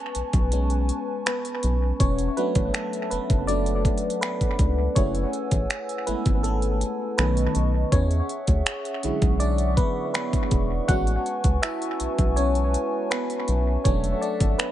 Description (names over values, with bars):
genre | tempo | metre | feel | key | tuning
contemporary R&B | 81 BPM | 4/4 | straight | unclear | A4 = 440 Hz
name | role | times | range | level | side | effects
FM electric piano | accompaniment | 0.0-14.7 s | D3 to F#5 | -26 LUFS | equal | chorus, phaser, analog delay
hollow soft pad | sustained chords | 0.0-14.7 s | G#4 to E6 | -32 LUFS | equal | chorus
trap drum kit | drums | 0.1-14.7 s | finger snaps, hi-hat, kick drum | -24 LUFS | equal | overdrive
rubbery square bass | bass | 0.2-14.6 s | E1 to E2 | -24 LUFS | equal | none
room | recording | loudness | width
digital ambience | echo-heavy mix, nothing above 10.3 kHz | -21 LUFS | side -12 dB against mid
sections
0.0-14.7 A section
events
FM electric piano solo 0.0-14.7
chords
0.0 Amaj9; 2.0 E9sus4; 5.0 F#m9; 7.2 B9; 7.9 E13; 10.9 Amaj9; 13.9 E9sus4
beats
0.52 1.26 | 2.00 2.74 3.48 4.22 | 4.96 5.70 6.44 7.18 | 7.92 8.66 9.41 10.15 | 10.89 11.63 12.37 13.11 | 13.85 14.59